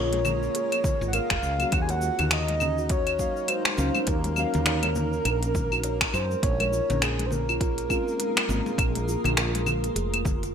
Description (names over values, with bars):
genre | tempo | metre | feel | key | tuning
organic downtempo | 102 BPM | 4/4 | swing 59% on 16ths | Bb minor | A4 = 440 Hz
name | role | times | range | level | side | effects
breathy flute-like synth lead | melody | 0.0-10.5 s | Ab4 to Ab5 | -30 LUFS | equal | wide subtle chorus, ping-pong delay
deep mellow chord stab | accompaniment | 0.0-9.1 s | Gb3 to F5 | -35 LUFS | left 5 dB | chorus, cassette tape, sidechain pumping, ping-pong delay
granular cloud pad | sustained chords | 0.0-10.5 s | Bb3 to Bb5 | -34 LUFS | right 1 dB | built-in reverb, sidechain pumping
kalimba | arpeggios | 0.0-10.5 s | Ab3 to Db5 | -33 LUFS | right 3 dB | ping-pong delay
woody fretless electric bass | bass | 0.0-10.5 s | F1 to Gb2 | -29 LUFS | equal | sidechain pumping
organic electronic drum kit | drums | 0.1-10.5 s | cabasa, claves, finger snaps, hi-hat | -27 LUFS | equal | gated reverb
congas | percussion | 0.1-10.4 s | none | -36 LUFS | left 3 dB | none
electronic kick drum | drums | 0.8-10.4 s | none | -28 LUFS | equal | overdrive
room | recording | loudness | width
moderate plate reverb, RT60 1.4 s, digital ambience | bright 1980s-style digital production | -23 LUFS | side -7 dB against mid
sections
0.0-10.5 A section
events
none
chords
0.0 Bbm7; 1.7 Ebm7; 6.4 Bbm7